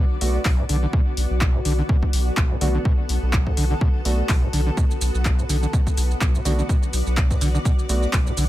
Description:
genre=acid house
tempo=125 BPM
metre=4/4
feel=swing 56% on 16ths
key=B minor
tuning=A4 = 439 Hz
part: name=overdriven acid bass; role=riff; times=0.0-8.4 s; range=B1 to D3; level=-28 LUFS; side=equal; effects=distortion, analog chorus, cassette tape, sidechain pumping, ping-pong delay
part: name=granular cloud pad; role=texture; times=0.0-8.5 s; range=B3 to D5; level=-30 LUFS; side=left 2 dB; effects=built-in reverb, sidechain pumping
part: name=dark baby grand piano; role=stabs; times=0.2-8.0 s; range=A3 to F#4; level=-30 LUFS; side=right 2 dB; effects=ping-pong delay
part: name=saturated sub bass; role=bass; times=0.2-8.5 s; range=B1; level=-21 LUFS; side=equal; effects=sidechain pumping
part: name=punchy analog drum machine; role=drums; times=0.2-8.5 s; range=handclaps, hi-hat, shaker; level=-28 LUFS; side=equal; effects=overdrive
part: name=electronic kick drum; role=drums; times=0.5-8.2 s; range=none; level=-20 LUFS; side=equal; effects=overdrive
room=little or no reverb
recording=none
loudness=-18 LUFS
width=side -15 dB against mid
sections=0.0-8.5 A section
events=none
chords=0.0 Bm7

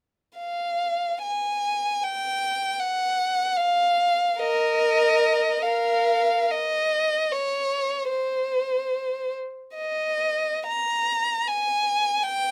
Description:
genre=classical, free, expressive piece for unaccompanied violin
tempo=free time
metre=none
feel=none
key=Bb dorian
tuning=A4 = 440 Hz
part: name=warm violin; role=solo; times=0.4-12.5 s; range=Bb4 to Bb5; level=-24 LUFS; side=equal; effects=none
room=light reverb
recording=none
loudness=-24 LUFS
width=mono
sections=0.4-5.6 A section; 5.6-12.5 B section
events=none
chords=none

